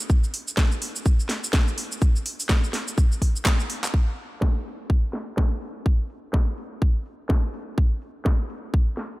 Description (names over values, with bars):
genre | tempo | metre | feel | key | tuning
house | 125 BPM | 4/4 | swing 58% on 16ths | none | none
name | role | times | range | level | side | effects
garage drum kit | drums | 0.0-9.1 s | handclaps, hi-hat, shaker, snare drum | -29 LUFS | equal | low-pass filter on hats, low-pass filter on perc, low-pass filter on snare
electronic kick drum | drums | 0.1-8.8 s | none | -20 LUFS | equal | none
room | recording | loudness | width
light reverb | none | -22 LUFS | side -20 dB against mid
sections
0.0-3.9 A section; 3.9-9.2 B section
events
drum fill 3.5-3.9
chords
none